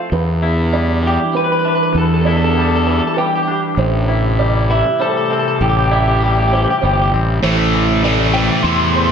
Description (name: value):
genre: rock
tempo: 98 BPM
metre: 3/4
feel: straight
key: A minor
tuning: A4 = 440 Hz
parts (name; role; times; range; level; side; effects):
- felt-muted upright piano; arpeggios; 0.0-9.1 s; B4 to E5; -24 LUFS; right 5 dB; slapback echo
- twangy electric guitar; arpeggios; 0.0-9.1 s; E2 to E4; -23 LUFS; left 4 dB; slapback echo
- warbly tape-like pad; sustained chords; 1.2-9.1 s; C3 to G4; -23 LUFS; right 1 dB; chorus, built-in reverb
- fuzz fingered electric bass; bass; 0.1-9.1 s; G1 to E2; -16 LUFS; equal; overdrive
- electric guitar through a small old amp; melody; 1.1-9.1 s; E4 to C6; -18 LUFS; equal; slapback echo
- distorted electric guitar; riff; 7.4-9.1 s; A2 to A3; -15 LUFS; right 1 dB; distortion
room: moderate lush hall reverb, RT60 1.8 s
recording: big arena sound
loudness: -13 LUFS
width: side -7 dB against mid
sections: 0.0-7.4 A section; 7.4-9.1 B section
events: build-up 7.4-9.1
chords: 0.1 Em7; 3.8 Am7